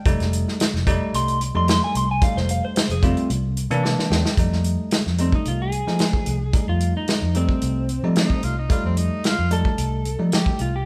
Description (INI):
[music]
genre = straight-eighth soul blues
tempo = 111 BPM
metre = 4/4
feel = straight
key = F mixolydian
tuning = A4 = 438 Hz
[part]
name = bell-like tine electric piano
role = accompaniment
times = 0.0-10.7 s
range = E3 to G5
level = -30 LUFS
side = equal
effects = none
[part]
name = vintage muted fingered electric bass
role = bass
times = 0.1-10.8 s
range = F1 to F3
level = -25 LUFS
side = equal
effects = none
[part]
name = warm soul drum kit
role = drums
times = 0.1-10.7 s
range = hi-hat, kick drum, snare drum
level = -24 LUFS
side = equal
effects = none
[part]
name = electric slide guitar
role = melody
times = 1.2-10.9 s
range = C4 to C6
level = -28 LUFS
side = equal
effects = none
[part]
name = bright tenor saxophone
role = second line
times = 8.2-9.5 s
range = C4 to F4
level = -31 LUFS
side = equal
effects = none
[sound]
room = moderate large studio reverb, RT60 1.2 s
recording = band playing live in one room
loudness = -21 LUFS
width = mono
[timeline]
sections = 0.0-4.4 A section; 4.4-10.9 B section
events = electric slide guitar solo 0.0-4.4; tine electric piano fill 3.6-4.4; drum fill 3.8-4.4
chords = 0.1 F7; 3.3 C7; 4.4 F7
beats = | 0.06 0.59 1.14 1.67 | 2.21 2.75 3.29 3.83 | 4.37 4.91 5.46 6.00 | 6.54 7.08 7.62 8.16 | 8.70 9.24 9.78 10.32